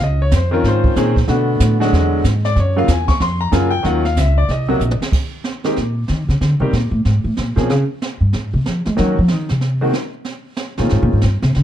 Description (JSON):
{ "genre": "jazz piano trio", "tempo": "187 BPM", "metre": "4/4", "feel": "swing 63% on 8ths", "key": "Ab major from 5.1 s", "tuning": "A4 = 440 Hz", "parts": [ { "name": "clear grand piano", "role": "melody", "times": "0.0-11.2 s", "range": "C3 to Db6", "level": "-18 LUFS", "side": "left 1 dB", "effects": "none" }, { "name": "upright bass", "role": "bass", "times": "0.0-11.6 s", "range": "Bb1 to Ab3", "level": "-16 LUFS", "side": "equal", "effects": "none" }, { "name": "jazz brush drum kit", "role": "drums", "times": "0.3-11.6 s", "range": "brushed snare drum, crash cymbal, hi-hat, kick drum, snare drum, toms", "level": "-22 LUFS", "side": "right 2 dB", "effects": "none" } ], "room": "light reverb", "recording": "dark, warm production", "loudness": "-14 LUFS", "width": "side -11 dB against mid", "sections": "0.0-5.1 A section; 5.1-11.6 A section", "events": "grand piano solo 0.0-5.1; drum fill 4.8-5.1; upright bass solo 5.1-11.6", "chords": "0.0 Dbmaj9; 1.3 Cbm7; 1.9 E9; 2.6 Gbmaj7; 3.8 Ebm9; 4.5 Ebm6; 5.1 Absus2 (rootless); 6.4 C7(no3); 7.0 N.C.; 7.7 Dbmaj7#11; 9.0 Ebm7; 9.6 N.C.; 10.3 Dbmaj9", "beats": "| 0.00 0.32 0.64 0.96 | 1.28 1.60 1.92 2.24 | 2.56 2.88 3.20 3.52 | 3.84 4.16 4.48 4.80 | 5.12 5.45 5.76 6.09 | 6.41 6.73 7.05 7.37 | 7.69 8.01 8.33 8.65 | 8.97 9.29 9.61 9.93 | 10.25 10.57 10.89 11.21 | 11.54" }